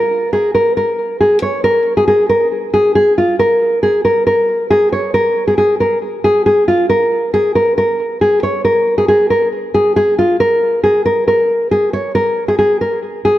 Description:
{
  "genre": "hip hop",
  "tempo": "137 BPM",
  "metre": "4/4",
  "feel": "half-time",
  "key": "Bb minor",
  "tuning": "A4 = 440 Hz",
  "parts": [
    { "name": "nylon-string guitar", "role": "solo", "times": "0.0-13.4 s", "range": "F4 to Db5", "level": "-11 LUFS", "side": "equal", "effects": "none" }
  ],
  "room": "moderate lush hall reverb, RT60 2.6 s",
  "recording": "dark, warm production",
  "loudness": "-11 LUFS",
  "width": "side -14 dB against mid",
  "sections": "0.0-3.4 A section; 3.4-13.4 B section",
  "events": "none",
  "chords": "none"
}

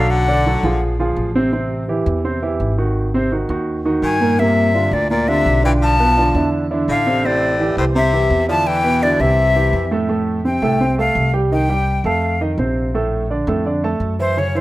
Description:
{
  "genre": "jazz",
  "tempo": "168 BPM",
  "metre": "4/4",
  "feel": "straight",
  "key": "F major from 10.1 s",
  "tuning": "A4 = 440 Hz",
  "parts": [
    { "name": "breathy bright jazz flute", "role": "melody", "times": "0.0-0.8, 4.0-14.6 s", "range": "C5 to A5", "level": "-18 LUFS", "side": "left 2 dB", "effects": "slapback echo" },
    { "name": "edgy baritone saxophone", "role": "second line", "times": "0.0-0.8, 4.0-9.9 s", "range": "A2 to F3", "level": "-24 LUFS", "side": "left 3 dB", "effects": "none" },
    { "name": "warm grand piano", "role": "accompaniment", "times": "0.0-14.6 s", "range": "A2 to A5", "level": "-19 LUFS", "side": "right 2 dB", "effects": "none" },
    { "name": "upright bass", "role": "bass", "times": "0.0-14.6 s", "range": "G#1 to G2", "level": "-20 LUFS", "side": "equal", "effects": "none" }
  ],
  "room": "small room ambience",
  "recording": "rough home demo mix",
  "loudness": "-15 LUFS",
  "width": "side -17 dB against mid",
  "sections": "0.0-10.1 A section; 10.1-14.6 B section",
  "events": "flute solo 10.1-14.6",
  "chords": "0.1 Bm7; 0.8 Bbsus2; 1.5 Am7; 3.0 G#9; 4.4 Gm7; 5.8 Bm7b5; 6.5 Amadd11; 7.2 Am7; 8.7 Em7; 9.4 C; 10.1 Fadd9; 11.5 Cmadd11; 12.2 F7; 12.9 Bbmaj7"
}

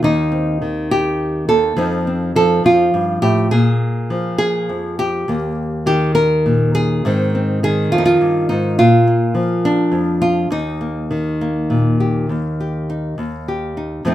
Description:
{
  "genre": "folk, solo fingerstyle acoustic guitar",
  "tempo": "68 BPM (dotted quarters)",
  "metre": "6/8",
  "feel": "straight",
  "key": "Eb major",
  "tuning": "A4 = 440 Hz",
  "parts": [
    { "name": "nylon-string guitar", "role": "solo", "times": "0.0-14.1 s", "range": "Eb2 to Bb4", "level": "-15 LUFS", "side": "equal", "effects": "none" }
  ],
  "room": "light reverb",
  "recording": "minimal, uncompressed stereo recording",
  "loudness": "-15 LUFS",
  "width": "side -13 dB against mid",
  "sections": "0.0-12.3 A section; 12.3-14.1 B section",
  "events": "none",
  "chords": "0.0 Cm/Eb; 1.8 F7; 3.5 Bb5; 5.3 Eb; 7.0 Ab; 8.8 Bb; 10.5 Eb"
}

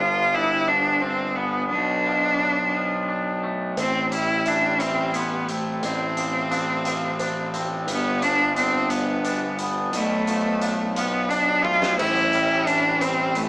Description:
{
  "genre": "post-rock",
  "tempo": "58 BPM (dotted quarters)",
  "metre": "6/8",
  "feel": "straight",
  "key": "A minor",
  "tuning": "A4 = 440 Hz",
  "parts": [
    { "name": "bright cello", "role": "melody", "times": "0.0-13.5 s", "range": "A3 to F4", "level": "-22 LUFS", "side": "equal", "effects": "none" },
    { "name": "twangy electric guitar", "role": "arpeggios", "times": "0.0-13.5 s", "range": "G2 to E4", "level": "-28 LUFS", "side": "equal", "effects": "none" },
    { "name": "fuzz picked electric bass", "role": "bass", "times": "0.0-13.5 s", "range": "G1 to B1", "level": "-27 LUFS", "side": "equal", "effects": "overdrive" },
    { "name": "felt-muted upright piano", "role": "arpeggios", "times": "3.8-13.5 s", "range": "B4 to C6", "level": "-34 LUFS", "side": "right 1 dB", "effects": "none" },
    { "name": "huge arena drum kit", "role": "drums", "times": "3.8-13.5 s", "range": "crash cymbal, hi-hat, kick drum, snare drum", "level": "-32 LUFS", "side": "equal", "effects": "none" }
  ],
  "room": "moderate large studio reverb, RT60 1.1 s",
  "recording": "band playing live in one room, small speaker sound",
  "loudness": "-20 LUFS",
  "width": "side -27 dB against mid",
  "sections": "0.0-12.0 A section; 12.0-13.5 B section",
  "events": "drum fill 11.6-12.0",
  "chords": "0.0 G7; 1.7 Bm7b5; 3.8 Am7; 5.8 Dm7/A; 7.9 G7; 9.9 Bm7b5; 12.0 Am7"
}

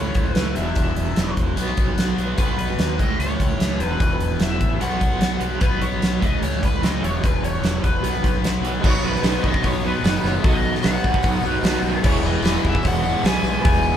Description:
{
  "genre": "classic rock",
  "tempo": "149 BPM",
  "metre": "4/4",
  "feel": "straight",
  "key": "B mixolydian",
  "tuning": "A4 = 440 Hz",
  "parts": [
    { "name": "lead guitar through a small cranked amp", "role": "melody", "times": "0.0-14.0 s", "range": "B4 to G#5", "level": "-27 LUFS", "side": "left 1 dB", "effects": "wah, overdrive" },
    { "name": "cranked stack guitar", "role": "riff", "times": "0.0-14.0 s", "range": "E2 to F#4", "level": "-27 LUFS", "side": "left 6 dB", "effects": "overdrive, phaser" },
    { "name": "overdriven semi-hollow guitar", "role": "riff", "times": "0.0-14.0 s", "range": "E2 to E4", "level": "-27 LUFS", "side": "right 6 dB", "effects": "tremolo" },
    { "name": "growling fingered electric bass", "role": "bass", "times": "0.0-13.9 s", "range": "E1 to D#2", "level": "-26 LUFS", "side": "equal", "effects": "overdrive" },
    { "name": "huge arena drum kit", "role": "drums", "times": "0.1-13.7 s", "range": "crash cymbal, hi-hat, kick drum, snare drum", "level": "-21 LUFS", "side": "equal", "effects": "none" },
    { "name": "tonewheel organ", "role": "sustained chords", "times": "8.5-14.0 s", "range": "none", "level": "barely audible", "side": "none", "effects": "none" },
    { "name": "bright grand piano", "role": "accompaniment", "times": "8.8-13.9 s", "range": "D#4 to C#5", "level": "-31 LUFS", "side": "right 3 dB", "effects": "none" },
    { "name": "fuzz guitar", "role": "riff", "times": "8.8-14.0 s", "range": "E2 to B3", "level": "-29 LUFS", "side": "equal", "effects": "none" },
    { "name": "tambourine", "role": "percussion", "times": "8.8-14.0 s", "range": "none", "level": "-41 LUFS", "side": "right 8 dB", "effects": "none" }
  ],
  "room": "light reverb",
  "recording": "band playing live in one room",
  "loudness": "-18 LUFS",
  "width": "side -10 dB against mid",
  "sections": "0.0-8.8 A section; 8.8-14.0 B section",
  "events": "none",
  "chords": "0.0 A/C#; 0.6 E5; 1.6 B5; 2.4 B; 3.0 A/C#; 3.8 E5; 4.8 B5; 6.2 A/C#; 7.0 E5; 8.0 B5; 8.8 B; 12.0 E"
}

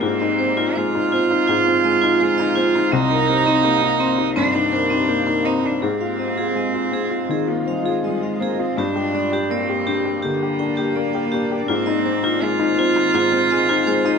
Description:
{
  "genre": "neoclassical piano and strings",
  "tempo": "83 BPM",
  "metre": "4/4",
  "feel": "rubato",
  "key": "unclear",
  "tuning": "A4 = 440 Hz",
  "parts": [
    { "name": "rich cello", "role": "second line", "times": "0.0-14.2 s", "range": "G3 to F4", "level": "-20 LUFS", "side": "right 6 dB", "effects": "none" },
    { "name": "warm upright piano", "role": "accompaniment", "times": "0.0-14.2 s", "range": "C2 to G4", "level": "-21 LUFS", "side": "left 5 dB", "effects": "none" },
    { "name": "shimmering ambient pad", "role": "sustained chords", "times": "0.0-14.2 s", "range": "Eb3 to F5", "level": "-31 LUFS", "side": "equal", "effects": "chorus, built-in reverb" },
    { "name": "vibraphone with hard mallets", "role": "arpeggios", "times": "0.0-14.2 s", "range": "C4 to G5", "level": "-26 LUFS", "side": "right 1 dB", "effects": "slapback echo" }
  ],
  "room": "light reverb",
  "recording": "none",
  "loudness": "-17 LUFS",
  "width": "side -6 dB against mid",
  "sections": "0.0-14.2 A section",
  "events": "none",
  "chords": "0.0 Fm7/Ab; 2.9 Cm7; 5.8 Ab6; 8.8 Gm; 11.7 Fm7/Ab"
}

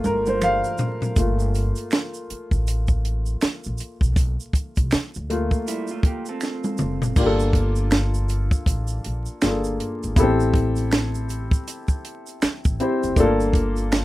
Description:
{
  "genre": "R&B, neo-soul",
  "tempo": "80 BPM",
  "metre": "4/4",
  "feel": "swing 61% on 16ths",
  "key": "G dorian",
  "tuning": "A4 = 440 Hz",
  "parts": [
    { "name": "warm upright piano", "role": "accompaniment", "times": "0.0-14.0 s", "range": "A3 to F5", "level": "-24 LUFS", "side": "left 1 dB", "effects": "none" },
    { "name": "compact cocktail drum kit", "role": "drums", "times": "0.0-14.0 s", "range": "crash cymbal, finger snaps, hi-hat, kick drum, snare drum, toms", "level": "-21 LUFS", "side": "equal", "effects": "none" },
    { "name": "tube shaker and finger snaps", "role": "percussion", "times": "0.0-14.0 s", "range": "none", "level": "-36 LUFS", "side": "right 5 dB", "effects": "none" },
    { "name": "upright bass", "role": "bass", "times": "0.1-14.0 s", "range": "F#1 to D2", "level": "-24 LUFS", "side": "equal", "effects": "none" },
    { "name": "electric guitar through a small old amp", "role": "second line", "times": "5.7-7.1 s", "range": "G3 to A4", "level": "-30 LUFS", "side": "right 5 dB", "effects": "none" }
  ],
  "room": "little or no reverb",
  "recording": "rough home demo mix, vinyl crackle",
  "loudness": "-20 LUFS",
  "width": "side -17 dB against mid",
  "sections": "0.0-1.2 A section; 1.2-7.2 B section; 7.2-14.0 C section",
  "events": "drum fill 0.0-1.2, 6.4-7.2; upright piano solo 0.0-1.2, 1.2-7.2",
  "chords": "0.0 Gm9; 1.2 Gm9 (rootless); 7.2 Gm9; 10.2 Am7; 13.2 Gm9"
}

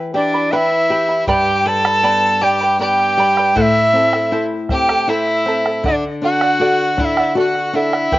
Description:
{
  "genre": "andean folk, Andean ensemble",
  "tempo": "79 BPM",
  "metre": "3/4",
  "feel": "straight",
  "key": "unclear",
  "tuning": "A4 = 440 Hz",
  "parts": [
    { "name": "charango", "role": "accompaniment", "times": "0.0-8.2 s", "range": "E4 to B5", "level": "-21 LUFS", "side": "right 3 dB", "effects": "none" },
    { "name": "nylon-string guitar", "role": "accompaniment", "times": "0.0-8.2 s", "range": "G2 to B4", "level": "-22 LUFS", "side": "left 3 dB", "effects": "none" },
    { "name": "reedy quena", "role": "melody", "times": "0.1-8.2 s", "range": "D5 to A5", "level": "-16 LUFS", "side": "right 1 dB", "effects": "slapback echo" },
    { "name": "clear violin", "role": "second line", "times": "0.1-8.2 s", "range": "D4 to A4", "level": "-21 LUFS", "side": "left 2 dB", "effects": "none" },
    { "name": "bombo", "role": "percussion", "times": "1.3-8.2 s", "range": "none", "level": "-23 LUFS", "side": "right 1 dB", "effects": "none" }
  ],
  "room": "little or no reverb",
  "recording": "recorded outdoors, with no room sound, nothing above 7.5 kHz",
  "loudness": "-13 LUFS",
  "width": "side -16 dB against mid",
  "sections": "0.0-8.2 A section",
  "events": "none",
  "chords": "0.0 Em; 1.3 G; 3.6 Am; 5.8 D"
}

